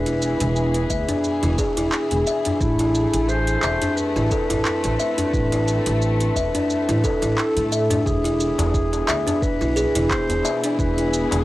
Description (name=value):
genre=organic downtempo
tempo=88 BPM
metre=4/4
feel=swing 55% on 16ths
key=unclear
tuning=A4 = 439 Hz
part: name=dark clarinet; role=melody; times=0.0-11.4 s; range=E4 to C5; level=-26 LUFS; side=equal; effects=tape echo
part: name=dark chamber string section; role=sustained chords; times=0.0-11.4 s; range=B2 to G#4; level=-29 LUFS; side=left 1 dB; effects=sidechain pumping, cassette tape
part: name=buzzing kalimba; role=arpeggios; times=0.0-11.4 s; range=D4 to E5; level=-23 LUFS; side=left 1 dB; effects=cassette tape, tape echo
part: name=upright bass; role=bass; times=0.0-11.4 s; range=E1 to A2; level=-23 LUFS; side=right 1 dB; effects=tube saturation, sidechain pumping
part: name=afro-pop drum kit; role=drums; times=0.1-11.4 s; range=handclaps, hi-hat, shaker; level=-27 LUFS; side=right 1 dB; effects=studio reverb, cassette tape
part: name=electronic kick drum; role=drums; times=0.9-10.9 s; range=none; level=-26 LUFS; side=equal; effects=studio reverb, cassette tape
part: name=darbuka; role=percussion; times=0.9-11.4 s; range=none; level=-32 LUFS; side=left 3 dB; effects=none
room=moderate booth ambience, RT60 0.2 s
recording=home recording on cassette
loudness=-18 LUFS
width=side -16 dB against mid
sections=0.0-8.1 A section; 8.1-11.4 B section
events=none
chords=0.0 E7; 2.6 Amadd9; 8.1 E7